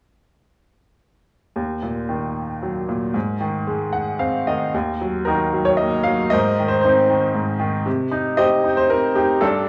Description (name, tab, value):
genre	classical, lyrical solo piano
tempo	115 BPM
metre	3/4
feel	rubato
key	Eb dorian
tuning	A4 = 440 Hz
part	bright upright piano	solo	1.6-9.7 s	Eb2 to Gb5	-20 LUFS	equal	none
room	moderate recital hall reverb, RT60 1.6 s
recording	worn, warbling old tape, cassette tape, warbly pitch drift, small room ambience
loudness	-20 LUFS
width	mono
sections	1.6-4.7 A section; 4.7-9.7 B section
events	upright piano fill 3.7-4.7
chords	1.6 Ebm; 3.1 Ab; 4.7 Ebm; 6.3 Abadd9; 7.9 Cm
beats	| 1.56 2.09 2.62 | 3.15 3.67 4.20 | 4.74 5.27 5.80 | 6.33 6.84 7.35 | 7.86 8.38 8.90 | 9.42